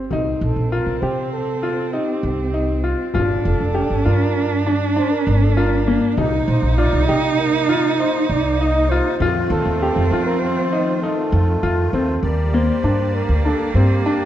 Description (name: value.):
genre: contemporary instrumental, chamber music in an uneven meter.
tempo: 99 BPM.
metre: 5/4.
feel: straight.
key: unclear.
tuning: A4 = 441 Hz.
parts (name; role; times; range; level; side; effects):
clear baby grand piano; arpeggios; 0.0-14.3 s; Bb3 to G4; -22 LUFS; left 2 dB; none.
upright bass; bass; 0.0-14.0 s; F1 to F3; -20 LUFS; equal; none.
rich cello; second line; 0.1-14.3 s; Bb3 to Eb4; -23 LUFS; right 5 dB; none.
frame drum; percussion; 0.1-11.5 s; none; -30 LUFS; left 6 dB; none.
breathy flugelhorn; melody; 0.4-14.3 s; G4 to Eb5; -25 LUFS; right 1 dB; none.
musette accordion; sustained chords; 6.2-14.3 s; C3 to D5; -29 LUFS; left 2 dB; none.
room: moderate concert hall reverb, RT60 2.2 s.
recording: dark, warm production.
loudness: -16 LUFS.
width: side -11 dB against mid.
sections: 0.1-12.2 A section; 12.2-14.3 B section.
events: none.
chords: 0.1 Cm; 3.1 Gm7; 6.2 Cm7; 9.2 F7; 12.2 Ebmaj7.